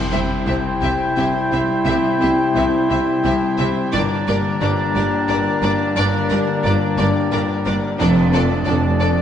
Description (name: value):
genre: cinematic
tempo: 88 BPM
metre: 3/4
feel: rubato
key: unclear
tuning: A4 = 441 Hz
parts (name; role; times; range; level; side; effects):
- clear clarinet; second line; 0.0-9.2 s; D4 to E4; -28 LUFS; left 1 dB; none
- mellow concert flute; second line; 0.0-9.2 s; G5 to Bb5; -26 LUFS; left 2 dB; none
- mellow cor anglais; second line; 0.0-9.2 s; C5 to D5; -28 LUFS; right 2 dB; none
- felt-muted upright piano; accompaniment; 0.0-9.2 s; F1 to A4; -23 LUFS; left 1 dB; none
- mellow French horn section; sustained chords; 0.0-9.2 s; G3 to E4; -25 LUFS; left 2 dB; none
- concert harp; arpeggios; 0.0-9.2 s; F2 to A5; -26 LUFS; left 6 dB; none
- rich studio violin section; melody; 0.1-9.1 s; D5 to E5; -28 LUFS; left 2 dB; none
- rich studio violin section; second line; 0.1-9.1 s; G4 to Bb4; -31 LUFS; left 2 dB; none
- clear studio viola section; accompaniment; 0.1-9.1 s; C4 to D4; -29 LUFS; right 1 dB; none
- rich studio cello section; bass; 0.1-9.2 s; F2 to C3; -25 LUFS; right 2 dB; none
- warm studio double bass section; bass; 0.1-9.2 s; F1 to C2; -24 LUFS; right 2 dB; none
room: wet scoring stage reverb, RT60 1.6 s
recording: nothing above 10.5 kHz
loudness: -16 LUFS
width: side -9 dB against mid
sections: 0.0-9.2 A section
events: none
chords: 0.0 C; 3.9 Gm; 8.0 Dm/F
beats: 0.47 1.17 | 1.86 2.56 3.25 | 3.93 4.62 5.29 | 5.96 6.64 7.32 | 7.99 8.67